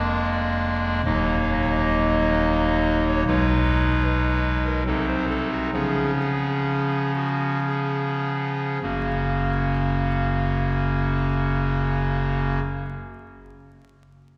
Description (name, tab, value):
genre	classical, chorale-style piece for pipe organ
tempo	50-82 BPM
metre	3/4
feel	rubato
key	F# major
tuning	A4 = 440 Hz
part	chamber organ, clarinet reed	solo	0.0-12.6 s	D#1 to E#5	-23 LUFS	equal	none
room	wet church reverb, RT60 2.9 s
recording	heard from further back in the room, vinyl crackle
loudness	-23 LUFS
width	mono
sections	0.0-8.8 A section; 8.8-12.4 B section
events	slowing down 2.2-8.8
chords	0.0 A#7/E#; 1.1 D#m; 3.3 G#m7/B; 4.9 Cdim; 5.7 C#7; 8.8 F#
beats	0.33 | 1.05 1.79 2.52 | 3.27 4.05 4.87 | 5.73 6.65 7.67 | 8.82 10.01 11.20